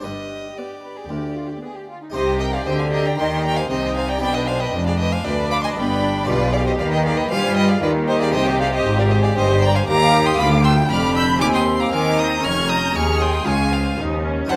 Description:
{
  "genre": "classical, baroque-style concerto movement with solo episodes",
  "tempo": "117 BPM",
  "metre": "4/4",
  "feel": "straight",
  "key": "C minor",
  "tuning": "A4 = 441 Hz",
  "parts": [
    { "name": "rich chamber violin section", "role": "melody", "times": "0.0-14.6 s", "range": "G4 to Ab6", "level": "-30 LUFS", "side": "equal", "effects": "none" },
    { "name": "rich violin", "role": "melody", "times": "0.0-14.6 s", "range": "Bb4 to F6", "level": "-27 LUFS", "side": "equal", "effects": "none" },
    { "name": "harpsichord", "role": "accompaniment", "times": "0.0-14.6 s", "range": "Db2 to Db5", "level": "-31 LUFS", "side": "equal", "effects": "none" },
    { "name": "rich chamber cello section", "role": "bass", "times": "0.0-14.6 s", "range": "Db2 to G3", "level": "-24 LUFS", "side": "equal", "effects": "none" },
    { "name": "rich chamber double bass section", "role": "bass", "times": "0.0-14.6 s", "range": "F1 to G2", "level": "-26 LUFS", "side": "equal", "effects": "none" },
    { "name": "rich chamber violin section", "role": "second line", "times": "0.6-14.6 s", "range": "Eb4 to Db6", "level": "-27 LUFS", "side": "equal", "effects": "none" },
    { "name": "rich chamber viola section", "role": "accompaniment", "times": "0.6-14.6 s", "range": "B3 to Ab4", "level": "-29 LUFS", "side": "equal", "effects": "none" }
  ],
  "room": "moderate concert hall reverb, RT60 1.9 s",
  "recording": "none",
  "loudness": "-19 LUFS",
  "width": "mono",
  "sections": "0.0-2.1 A section; 2.1-14.6 B section",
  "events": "none",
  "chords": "0.0 G; 2.1 Cm; 4.2 G; 6.3 G7/B; 8.3 Cm; 10.4 Bdim/D; 11.4 Cm/Eb; 12.4 Db/F"
}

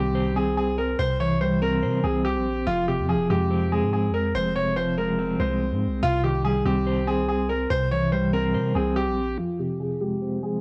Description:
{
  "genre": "hip hop, drill",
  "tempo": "143 BPM",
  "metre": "4/4",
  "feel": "half-time",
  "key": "F minor",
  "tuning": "A4 = 436 Hz",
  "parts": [
    { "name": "clear concert grand piano", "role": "melody", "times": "0.0-10.6 s", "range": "F4 to Db5", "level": "-28 LUFS", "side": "equal", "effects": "low-pass filter, plate reverb" },
    { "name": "mellow electric guitar", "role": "accompaniment", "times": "0.0-10.6 s", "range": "F2 to C5", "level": "-27 LUFS", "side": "equal", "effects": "tremolo, low-pass filter, cassette tape" },
    { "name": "long sustained 808-style bass", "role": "bass", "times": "0.0-9.4 s", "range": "F1 to C3", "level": "-31 LUFS", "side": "equal", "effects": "none" }
  ],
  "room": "moderate studio reverb, RT60 0.5 s",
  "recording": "home recording on cassette, nothing above 10.7 kHz",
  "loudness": "-24 LUFS",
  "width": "mono",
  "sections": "0.0-9.4 A section; 9.4-10.6 B section",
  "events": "filter sweep 9.4-10.6",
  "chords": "0.0 Cm; 1.0 C; 2.7 Fm; 6.0 Cm; 7.7 C; 9.4 Fm"
}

